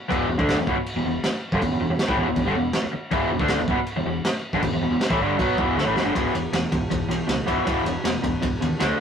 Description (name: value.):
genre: garage rock duo or trio.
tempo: 159 BPM.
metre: 4/4.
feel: straight.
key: unclear.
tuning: A4 = 440 Hz.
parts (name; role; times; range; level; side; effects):
raw garage guitar; riff; 0.1-9.0 s; E2 to D4; -22 LUFS; equal; overdrive.
hollow-body short-scale fingered electric bass; bass; 0.1-8.9 s; E1 to D#2; -32 LUFS; equal; none.
crunchy breakbeat drum kit; drums; 0.1-8.9 s; crash cymbal, kick drum, ride cymbal, snare drum; -26 LUFS; equal; none.
room: moderate studio reverb, RT60 0.6 s.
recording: rough rehearsal-room recording, warm saturation.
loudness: -21 LUFS.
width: side -7 dB against mid.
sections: 0.0-6.1 A section; 6.1-9.0 B section.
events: drum fill 5.8-6.1.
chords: 0.0 E5; 8.8 D5.